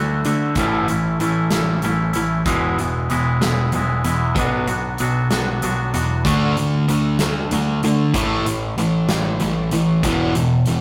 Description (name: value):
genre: quiet-loud alternative rock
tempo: 63 BPM (dotted quarters)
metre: 6/8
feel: straight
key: unclear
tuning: A4 = 440 Hz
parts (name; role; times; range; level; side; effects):
- twangy electric guitar; arpeggios; 0.0-6.3 s; E2 to F#4; -25 LUFS; equal; none
- overdriven electric guitar; riff; 0.0-10.8 s; E2 to D4; -24 LUFS; equal; none
- growling picked electric bass; bass; 0.0-10.8 s; E1 to D3; -26 LUFS; equal; overdrive
- big rock drum kit; drums; 0.2-10.8 s; hi-hat, kick drum, snare drum; -28 LUFS; equal; none
- fuzz guitar; riff; 6.3-10.8 s; E2 to D4; -24 LUFS; equal; distortion
room: moderate stone room reverb, RT60 1.1 s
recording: rough rehearsal-room recording, tube saturation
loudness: -19 LUFS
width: mono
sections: 0.0-10.8 A section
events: none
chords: 0.0 Dadd9; 0.6 A; 2.5 E; 4.4 Bm; 6.3 D5; 8.1 A5; 10.0 E5